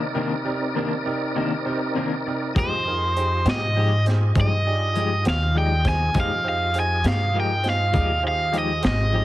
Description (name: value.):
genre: slow blues.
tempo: 67 BPM (dotted quarters).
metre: 12/8.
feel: straight.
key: unclear.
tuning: A4 = 442 Hz.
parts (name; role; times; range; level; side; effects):
bright grand piano; accompaniment; 0.0-9.2 s; C3 to Eb5; -30 LUFS; right 4 dB; none.
electric guitar through a small old amp; accompaniment; 0.0-9.2 s; C3 to G4; -28 LUFS; left 5 dB; tremolo.
tonewheel organ; sustained chords; 0.0-9.2 s; C4 to Eb5; -30 LUFS; equal; slow rotary speaker, chorus vibrato.
overdriven electric guitar; melody; 2.6-9.2 s; C5 to Ab5; -23 LUFS; right 1 dB; none.
upright bass; bass; 2.6-9.2 s; Ab1 to Ab2; -23 LUFS; equal; none.
crunchy breakbeat drum kit; drums; 2.6-9.0 s; hi-hat, kick drum, snare drum; -26 LUFS; equal; none.
room: light reverb.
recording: heavily compressed radio sound.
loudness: -20 LUFS.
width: side -15 dB against mid.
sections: 0.0-9.2 A section.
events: none.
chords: 0.0 Cm9; 2.6 Fm9.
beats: 0.76 1.66 | 2.56 3.46 4.35 5.25 | 6.14 7.04 7.94 8.83.